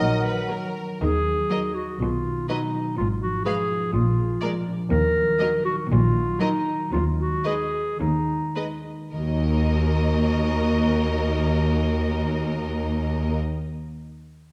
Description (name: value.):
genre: cinematic.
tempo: 102-125 BPM.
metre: 4/4.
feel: straight.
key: Eb minor.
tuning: A4 = 440 Hz.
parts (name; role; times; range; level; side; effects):
harpsichord; melody; 0.0-0.7 s; none; barely audible; none; none.
rich studio violin section; melody; 0.0-13.4 s; Bb4 to F5; -35 LUFS; equal; none.
flute section; second line; 0.0-0.8 s; Gb5; -38 LUFS; equal; none.
mellow clarinet; second line; 0.0-13.4 s; D#4 to Bb4; -29 LUFS; equal; none.
warm oboe; second line; 0.0-0.8 s; Bb4; -38 LUFS; equal; none.
warm bassoon; accompaniment; 0.0-0.7 s; Gb3; -37 LUFS; equal; none.
dark French horn section; sustained chords; 0.0-0.8 s; Gb3 to Bb4; -34 LUFS; equal; none.
concert harp; arpeggios; 0.0-13.6 s; Ab2 to Eb5; -33 LUFS; equal; none.
rich studio cello section; bass; 0.0-13.3 s; Eb2 to Eb3; -30 LUFS; equal; none.
rich studio double bass section; bass; 0.0-13.3 s; Ab1 to Eb2; -29 LUFS; equal; none.
rich studio violin section; second line; 0.5-13.3 s; Bb4 to B4; -36 LUFS; equal; none.
rich studio viola section; accompaniment; 0.5-13.3 s; Gb3 to Bb3; -31 LUFS; equal; none.
room: moderate scoring stage reverb, RT60 1.6 s.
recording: dark, warm production.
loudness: -24 LUFS.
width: mono.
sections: 0.0-1.0 A section; 1.0-9.1 B section; 9.1-13.8 C section.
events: slowing down 3.9-9.1.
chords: 0.0 Ebm; 2.0 B; 3.0 Fdim/Ab; 3.9 Bb7; 4.9 Ebm; 6.9 Abm/Eb; 9.1 Ebm.